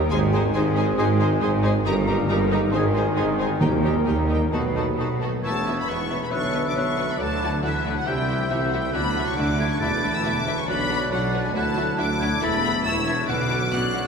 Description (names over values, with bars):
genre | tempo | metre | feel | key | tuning
cinematic, heroic adventure film score | 137 BPM | 4/4 | straight | unclear | A4 = 439 Hz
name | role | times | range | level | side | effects
bright trombone section | sustained chords | 0.0-14.0 s | D3 to E4 | -30 LUFS | right 2 dB | none
mellow French horn section | sustained chords | 0.0-14.1 s | D3 to C#5 | -32 LUFS | left 3 dB | none
dark trumpet | stabs | 0.0-14.1 s | F#4 to C#5 | -32 LUFS | equal | none
clear symphonic cello section | bass | 0.0-14.1 s | D2 to D3 | -28 LUFS | right 1 dB | none
rich chamber double bass section | bass | 0.0-14.1 s | E1 to Eb2 | -29 LUFS | right 1 dB | none
warm tuba | bass | 0.0-14.1 s | E1 to Eb2 | -29 LUFS | right 2 dB | none
rich symphonic violin section | melody | 0.1-14.0 s | E5 to F#6 | -30 LUFS | left 3 dB | none
bright concert flute | second line | 0.1-14.1 s | A5 to A6 | -32 LUFS | left 1 dB | none
clear clarinet | second line | 0.1-14.1 s | B3 to Ab4 | -34 LUFS | left 2 dB | none
warm oboe | second line | 0.1-14.1 s | B4 to F#5 | -33 LUFS | left 1 dB | none
warm symphonic violin section | second line | 0.1-14.0 s | F#4 to F#5 | -35 LUFS | left 5 dB | none
rich symphonic viola section | accompaniment | 0.1-14.0 s | A3 to F#4 | -35 LUFS | right 1 dB | none
timpani | percussion | 3.6-4.2, 9.8-10.4, 13.3-13.9 s | E2 to Eb3 | -30 LUFS | equal | none
room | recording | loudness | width
wet church reverb, RT60 4.1 s | recorded in a church or concert hall | -20 LUFS | side -6 dB against mid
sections
0.0-5.4 A section; 5.4-14.1 B section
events
none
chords
0.1 Ab; 1.9 Eb/G; 2.7 Ab; 3.6 Eb; 4.5 B7; 5.4 E5; 6.3 Bmadd9; 7.2 Dadd9; 8.1 C; 8.9 Dadd9; 9.8 Esus4; 10.7 Bmadd9; 11.5 Dadd9; 12.4 Esus4; 13.3 Bmadd9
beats
| 0.11 0.55 0.98 1.42 | 1.86 2.30 2.74 3.18 | 3.62 4.06 4.51 4.97 | 5.42 5.87 6.31 6.75 | 7.19 7.63 8.06 8.50 | 8.94 9.37 9.81 10.24 | 10.67 11.11 11.54 11.97 | 12.41 12.85 13.28 13.71